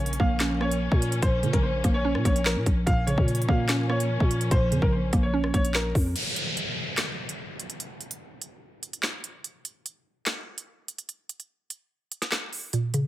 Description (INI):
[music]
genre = hip hop, drill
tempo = 146 BPM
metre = 4/4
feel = half-time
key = Bb minor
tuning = A4 = 442 Hz
[part]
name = clear upright piano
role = melody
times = 0.0-5.9 s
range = Bb4 to F5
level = -31 LUFS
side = equal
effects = tape echo
[part]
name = mallet-like synth pluck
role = accompaniment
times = 0.0-6.2, 12.7-13.1 s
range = Bb2 to Db4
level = -28 LUFS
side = right 2 dB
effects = chorus
[part]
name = dark symphonic string section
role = sustained chords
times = 0.0-6.1 s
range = F3 to Db4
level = -34 LUFS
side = left 1 dB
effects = none
[part]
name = growling 808-style bass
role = bass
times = 0.0-6.1 s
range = Bb1 to Bb2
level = -27 LUFS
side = equal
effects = none
[part]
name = drill drum kit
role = drums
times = 0.1-13.0 s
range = crash cymbal, handclaps, hi-hat, kick drum, rim click, snare drum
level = -27 LUFS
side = equal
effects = none
[part]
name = downlifter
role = sound effects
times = 6.2-9.4 s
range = none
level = -32 LUFS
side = equal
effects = none
[sound]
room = digital ambience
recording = none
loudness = -23 LUFS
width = side -15 dB against mid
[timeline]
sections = 0.0-6.2 A section; 6.2-13.1 B section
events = break 6.2-12.7; kick muted 12.7-13.1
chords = 0.0 Bbm; 6.2 N.C.